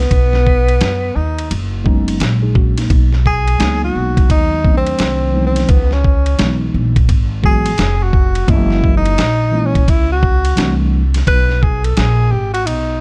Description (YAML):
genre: hip hop, jazz-hop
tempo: 86 BPM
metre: 4/4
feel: swing 64% on 16ths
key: G# minor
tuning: A4 = 441 Hz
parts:
  - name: mellow tenor saxophone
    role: melody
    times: 0.0-13.0 s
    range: B3 to B4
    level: -21 LUFS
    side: equal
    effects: none
  - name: upright bass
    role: bass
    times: 0.0-13.0 s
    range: E#1 to F#2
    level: -18 LUFS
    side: equal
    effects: none
  - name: dusty soul sampler-style drum kit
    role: drums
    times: 0.0-12.9 s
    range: hi-hat, kick drum, ride cymbal, snare drum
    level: -18 LUFS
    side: equal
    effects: none
  - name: mellow tine electric piano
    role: accompaniment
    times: 1.8-11.0 s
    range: D#3 to D#5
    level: -22 LUFS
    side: equal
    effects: none
room: little or no reverb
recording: dark, warm production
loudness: -14 LUFS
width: mono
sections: 0.0-13.0 A section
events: tenor saxophone solo 0.0-13.0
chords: 0.1 B6; 2.9 G#m7/B; 5.0 Cdim7; 5.7 C#m11; 8.5 F#13; 10.6 C6; 11.3 G#madd9